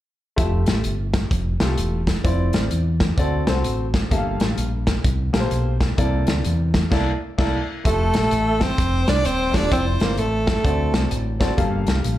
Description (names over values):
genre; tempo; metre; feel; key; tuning
uptempo gospel; 128 BPM; 4/4; swing 63% on 8ths; F major; A4 = 439 Hz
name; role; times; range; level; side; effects
warm concert grand piano; accompaniment; 0.4-12.2 s; G2 to F5; -26 LUFS; left 2 dB; slapback echo
fingered electric bass; bass; 0.4-12.2 s; Eb1 to E2; -22 LUFS; equal; none
natural country drum kit; drums; 0.4-12.2 s; crash cymbal, hi-hat, kick drum, snare drum; -22 LUFS; equal; none
breathy tenor saxophone; melody; 7.9-11.1 s; A3 to D4; -23 LUFS; right 3 dB; slapback echo
clear fiddle; melody; 7.9-11.1 s; A4 to D5; -25 LUFS; left 2 dB; slapback echo
room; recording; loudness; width
light reverb, small room ambience; live gig heard through the venue's PA, club reverb; -18 LUFS; side -14 dB against mid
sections
0.4-7.8 A section; 7.8-12.2 B section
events
band accent 6.9-7.8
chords
0.4 Fmaj9; 2.2 Dm9/F; 3.2 D7; 4.1 Gm9; 6.0 C13; 7.8 Fmaj9; 9.7 Dm9/F; 10.7 D7; 11.6 Gm9